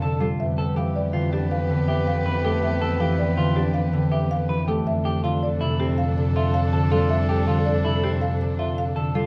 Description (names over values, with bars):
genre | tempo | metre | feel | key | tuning
classical, minimalist pattern music | 161 BPM | 6/4 | straight | F lydian | A4 = 440 Hz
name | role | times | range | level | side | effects
buzzing marimba with medium mallets | melody | 0.0-9.3 s | G4 to F5 | -32 LUFS | equal | none
clear clarinet | second line | 0.0-9.1 s | A4 to B4 | -34 LUFS | equal | none
concert harp | accompaniment | 0.0-9.3 s | C3 to A3 | -27 LUFS | equal | none
rich studio violin section | sustained chords | 0.0-9.1 s | B3 to A4 | -36 LUFS | equal | none
clean electric guitar | arpeggios | 0.0-9.3 s | C4 to B4 | -33 LUFS | equal | none
rich double bass | bass | 0.0-9.2 s | F2 | -28 LUFS | equal | none
room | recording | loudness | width
moderate large studio reverb, RT60 1.3 s | dark, warm production | -23 LUFS | mono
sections
0.0-9.3 A section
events
none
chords
0.4 G9/F; 4.9 F69